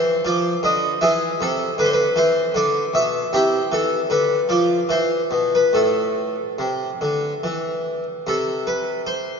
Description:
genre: classical, baroque-style suite movement for harpsichord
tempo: 70-80 BPM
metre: 3/4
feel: rubato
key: A minor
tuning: A4 = 438 Hz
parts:
  - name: harpsichord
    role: solo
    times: 0.0-9.4 s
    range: A2 to E5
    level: -18 LUFS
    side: equal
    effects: none
room: wet cathedral reverb, RT60 4.2 s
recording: nothing above 7.5 kHz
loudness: -18 LUFS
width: side -6 dB against mid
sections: 0.0-8.3 A section; 8.3-9.4 B section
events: none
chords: 0.0 Dm; 1.0 Cmaj13; 2.6 E5/D; 3.3 Am/C; 4.1 Bdim/D; 4.9 E5; 5.7 Am; 8.3 N.C.

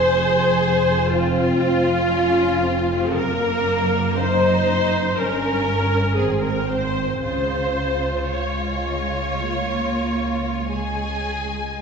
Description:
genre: classical, slow romantic movement for string orchestra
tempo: 47-62 BPM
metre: 4/4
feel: rubato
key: Db major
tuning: A4 = 440 Hz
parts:
  - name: rich symphonic violin section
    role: melody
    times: 0.0-11.8 s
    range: F4 to Ab5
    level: -28 LUFS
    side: left 3 dB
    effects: none
  - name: warm symphonic violin section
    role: second line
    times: 0.0-11.8 s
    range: Bb3 to Ab4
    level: -26 LUFS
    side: left 1 dB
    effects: none
  - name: clear symphonic viola section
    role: accompaniment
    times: 0.0-11.3 s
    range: F4 to Db5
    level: -21 LUFS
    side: equal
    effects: none
  - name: dark symphonic cello section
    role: bass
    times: 0.0-11.8 s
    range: F2 to Bb3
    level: -27 LUFS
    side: right 2 dB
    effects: none
  - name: rich symphonic double bass section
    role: bass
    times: 0.0-11.6 s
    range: F1 to Db2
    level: -27 LUFS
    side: right 2 dB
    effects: none
room: wet scoring stage reverb, RT60 1.6 s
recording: heard from further back in the room, nothing above 8.0 kHz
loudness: -18 LUFS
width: side -6 dB against mid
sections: 0.0-11.8 A section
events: none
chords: 0.0 Fm; 3.2 Ebm/Gb; 5.2 Gdim; 6.2 Ab; 7.2 Db

